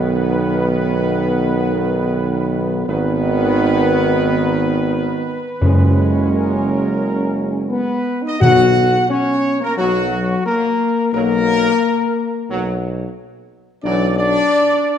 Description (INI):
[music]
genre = classical, ceremonial fanfare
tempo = 88 BPM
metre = 4/4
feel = straight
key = unclear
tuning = A4 = 440 Hz
[part]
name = mellow trumpet section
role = melody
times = 0.0-15.0 s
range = F#4 to F#5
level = -21 LUFS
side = right 1 dB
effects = none
[part]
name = bright trombone section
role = sustained chords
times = 0.0-14.1 s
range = D#3 to G#3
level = -23 LUFS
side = right 4 dB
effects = none
[part]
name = mellow French horn section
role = sustained chords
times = 0.0-15.0 s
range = F#3 to F#4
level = -19 LUFS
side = left 4 dB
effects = none
[part]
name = clear tuba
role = bass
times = 0.0-14.4 s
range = F#1 to B1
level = -21 LUFS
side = right 2 dB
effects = none
[part]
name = timpani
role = percussion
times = 5.6-9.4 s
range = F#2 to B2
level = -17 LUFS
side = equal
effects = none
[sound]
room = wet scoring stage reverb, RT60 1.7 s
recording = dark, warm production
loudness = -14 LUFS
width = side -9 dB against mid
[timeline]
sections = 0.0-8.4 A section; 8.4-15.0 B section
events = none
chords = 0.0 B; 2.9 G#m; 5.6 F#add9; 8.4 F#/B; 13.8 Dadd9/B